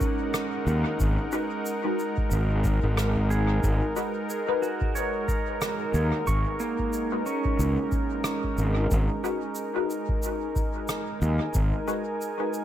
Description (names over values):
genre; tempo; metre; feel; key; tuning
ambient dub; 91 BPM; 4/4; swing 58% on 16ths; unclear; A4 = 440 Hz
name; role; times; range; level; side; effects
warm analog pad; sustained chords; 0.0-12.6 s; G#3 to G#5; -30 LUFS; equal; chorus, vintage 12-bit sampler grit
pedal steel guitar; arpeggios; 0.0-9.7 s; A#3 to C#6; -33 LUFS; right 4 dB; dub echo
electronic kick drum; drums; 0.0-11.7 s; none; -29 LUFS; equal; none
shaker and rim click; drums; 0.0-12.6 s; none; -37 LUFS; equal; dub echo
fuzz fingered electric bass; bass; 0.7-11.7 s; G#1 to D#2; -24 LUFS; equal; overdrive
filtered dub chord stab; stabs; 1.3-12.5 s; G#3 to B4; -33 LUFS; left 3 dB; phaser, lush chorus, cassette tape, dub echo
room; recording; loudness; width
light reverb, small room reverb; echo-heavy mix; -24 LUFS; side -11 dB against mid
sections
0.0-12.6 A section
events
none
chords
0.0 G#7(no3)